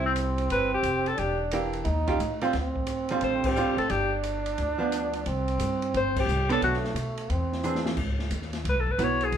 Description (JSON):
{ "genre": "jazz, small-group swing and bop", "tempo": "177 BPM", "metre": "4/4", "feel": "swing 65% on 8ths", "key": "unclear", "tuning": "A4 = 440 Hz", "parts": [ { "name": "bright alto saxophone", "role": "melody", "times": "0.0-9.4 s", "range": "C4 to C#5", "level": "-26 LUFS", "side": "left 2 dB", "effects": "none" }, { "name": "bright trombone", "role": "second line", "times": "0.0-7.9 s", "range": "A3 to D#4", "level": "-30 LUFS", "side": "right 3 dB", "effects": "none" }, { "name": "archtop guitar, miked and amplified", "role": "accompaniment", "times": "0.0-9.3 s", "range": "D3 to C#5", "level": "-29 LUFS", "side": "right 4 dB", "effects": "none" }, { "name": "upright bass", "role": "bass", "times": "0.0-9.4 s", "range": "E1 to B2", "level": "-31 LUFS", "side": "equal", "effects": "none" }, { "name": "open jazz drum kit", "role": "drums", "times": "0.2-9.4 s", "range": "crash cymbal, hi-hat, kick drum, ride cymbal, snare drum", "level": "-35 LUFS", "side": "left 1 dB", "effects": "none" } ], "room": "moderate large studio reverb, RT60 0.8 s", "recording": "band playing live in one room", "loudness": "-24 LUFS", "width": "side -8 dB against mid", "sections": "0.0-8.0 A section; 8.0-9.4 B section", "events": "band accent 3.4, 6.1; drum fill 7.6-8.0; alto saxophone solo 8.0-9.4", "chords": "0.0 C; 1.2 Em7b5; 1.9 D#9; 2.5 Dm7; 3.9 G7; 5.3 C5; 6.6 Bm9; 7.3 E7b13; 8.0 C#m11" }